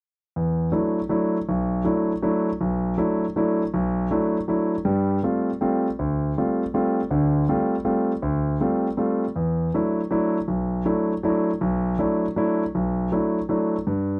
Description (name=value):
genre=jazz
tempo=160 BPM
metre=3/4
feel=swing 66% on 8ths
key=unclear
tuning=A4 = 440 Hz
part: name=warm concert grand piano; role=solo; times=0.4-14.2 s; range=B1 to F4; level=-23 LUFS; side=equal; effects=none
room=little or no reverb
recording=dry, close 1970s-style studio recording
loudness=-23 LUFS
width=mono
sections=0.4-14.2 A section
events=none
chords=0.4 E9sus4; 4.9 G9sus4; 9.4 E9sus4